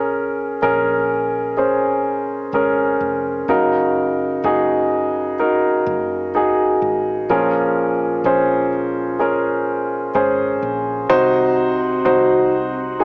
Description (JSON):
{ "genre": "pop ballad", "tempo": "63 BPM", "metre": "4/4", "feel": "straight", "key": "Bb minor", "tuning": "A4 = 440 Hz", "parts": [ { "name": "clear concert grand piano", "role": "accompaniment", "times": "0.0-13.0 s", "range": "Bb2 to C5", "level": "-15 LUFS", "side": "equal", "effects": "cassette tape" }, { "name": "woody fretless electric bass", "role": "bass", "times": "0.0-13.0 s", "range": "F1 to C2", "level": "-34 LUFS", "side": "equal", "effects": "none" }, { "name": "glassy FM pad", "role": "sustained chords", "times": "11.7-13.0 s", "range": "C3 to Gb4", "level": "-25 LUFS", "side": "equal", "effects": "ensemble chorus, built-in reverb, cassette tape" } ], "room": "moderate small room reverb, RT60 0.5 s", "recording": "home recording on cassette, small speaker sound", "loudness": "-15 LUFS", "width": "side -34 dB against mid", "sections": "0.0-11.1 A section; 11.1-13.0 B section", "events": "none", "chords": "0.0 Bbm7; 3.5 Gb6; 7.3 Bbm7; 11.1 Cdim" }